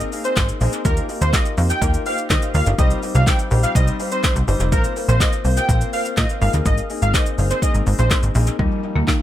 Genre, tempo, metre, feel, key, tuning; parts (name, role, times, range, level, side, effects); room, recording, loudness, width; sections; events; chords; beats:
dance-pop; 124 BPM; 4/4; straight; Eb major; A4 = 436 Hz
warm concert grand piano; accompaniment; 0.0-9.2 s; F3 to C5; -26 LUFS; left 3 dB; sidechain pumping, tape echo
plucky analog bass; bass; 0.0-9.2 s; F1 to Eb3; -18 LUFS; equal; sidechain pumping
deep house drum kit; drums; 0.0-9.2 s; handclaps, hi-hat, kick drum, shaker, snare drum; -20 LUFS; equal
wide unison lead; melody; 0.2-8.2 s; Bb4 to G5; -24 LUFS; right 1 dB; sidechain pumping, tape echo
buzzing marimba with medium mallets; melody; 8.6-9.2 s; G3 to Bb3; -24 LUFS; equal; tape echo
little or no reverb; echo-heavy mix; -16 LUFS; side -12 dB against mid
0.0-8.6 A section
drop 0.0-8.6
0.0 Abadd9; 0.9 Ebadd9; 2.8 Cm; 4.7 Bbsus2; 6.4 Abadd9; 8.6 Ebadd9
0.37 | 0.85 1.33 1.82 2.30 | 2.79 3.27 3.75 4.24 | 4.72 5.21 5.69 6.17 | 6.66 7.14 7.62 8.11 | 8.59 9.08